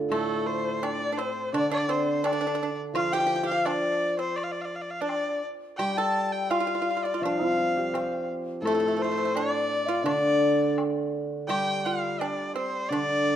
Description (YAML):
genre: chinese traditional, Chinese chamber ensemble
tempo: 84 BPM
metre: 2/4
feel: straight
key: D yu mode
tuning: A4 = 439 Hz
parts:
  - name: hammered dulcimer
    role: accompaniment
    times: 0.0-13.4 s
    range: A2 to C5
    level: -29 LUFS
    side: right 1 dB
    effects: none
  - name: rich erhu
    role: melody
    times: 0.1-13.4 s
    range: A4 to A5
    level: -29 LUFS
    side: equal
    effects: none
  - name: bright low xiao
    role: second line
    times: 0.1-10.8 s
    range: A4 to G5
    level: -30 LUFS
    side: left 5 dB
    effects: none
  - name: pipa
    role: second line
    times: 0.1-13.4 s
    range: A3 to A4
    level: -32 LUFS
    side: right 4 dB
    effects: none
  - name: woodblock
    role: percussion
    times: 0.1-13.1 s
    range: none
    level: -40 LUFS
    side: left 2 dB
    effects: none
room: moderate recital hall reverb, RT60 1.6 s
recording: dark, warm production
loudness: -24 LUFS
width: side -10 dB against mid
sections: 0.1-11.5 A section; 11.5-13.4 B section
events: none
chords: none